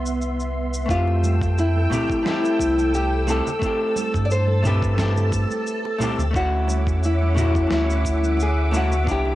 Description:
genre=sunset chillout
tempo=88 BPM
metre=4/4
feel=swing 54% on 16ths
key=unclear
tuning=A4 = 441 Hz
part: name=vintage hollow-body jazz guitar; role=accompaniment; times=0.0-9.3 s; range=A3 to E5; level=-28 LUFS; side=moving between left 2 dB and right 4 dB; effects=auto-pan, cassette tape, tape echo
part: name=soft string machine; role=sustained chords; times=0.0-9.3 s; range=B3 to E6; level=-28 LUFS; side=equal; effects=ensemble chorus, cassette tape
part: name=warm sub bass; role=bass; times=0.0-9.3 s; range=C2 to G2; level=-21 LUFS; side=equal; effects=none
part: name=electronic cabasa, congas and snare drum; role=drums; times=0.1-9.2 s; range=none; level=-30 LUFS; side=equal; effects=cassette tape
part: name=nylon-string guitar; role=melody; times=0.9-9.3 s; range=E4 to D5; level=-24 LUFS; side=left 1 dB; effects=cassette tape, tape echo
part: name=electronic kick drum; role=drums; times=0.9-9.2 s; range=none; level=-28 LUFS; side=equal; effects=cassette tape
part: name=bongos and congas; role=percussion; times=1.1-9.3 s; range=none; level=-36 LUFS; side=right 8 dB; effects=none
room=moderate studio ambience, RT60 0.5 s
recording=home recording on cassette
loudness=-19 LUFS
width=side -15 dB against mid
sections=0.9-9.3 A section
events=none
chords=0.0 Cmaj9; 0.9 Fmaj9; 6.3 Dmaj9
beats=0.21 | 0.89 1.58 2.26 2.94 | 3.62 4.30 4.99 5.67 | 6.35 7.03 7.71 8.39 | 9.08

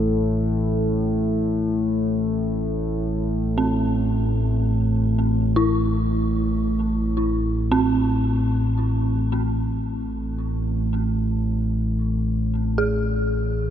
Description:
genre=dark ambient drone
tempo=free time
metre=none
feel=none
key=A harmonic minor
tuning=A4 = 440 Hz
part: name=analog drone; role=drone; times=0.0-13.7 s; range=A1 to A2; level=-21 LUFS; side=equal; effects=chorus
part: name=quartz singing bowl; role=texture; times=0.0-9.6 s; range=none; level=barely audible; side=none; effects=none
part: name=dark detuned synth bell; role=arpeggios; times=3.6-13.7 s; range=C4 to G#4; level=-25 LUFS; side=right 1 dB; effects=chorus, tape echo
room=moderate huge ambient reverb, RT60 8.0 s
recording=none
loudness=-20 LUFS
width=side -10 dB against mid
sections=0.0-9.6 A section; 9.6-13.7 A section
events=none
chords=0.0 A5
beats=free time

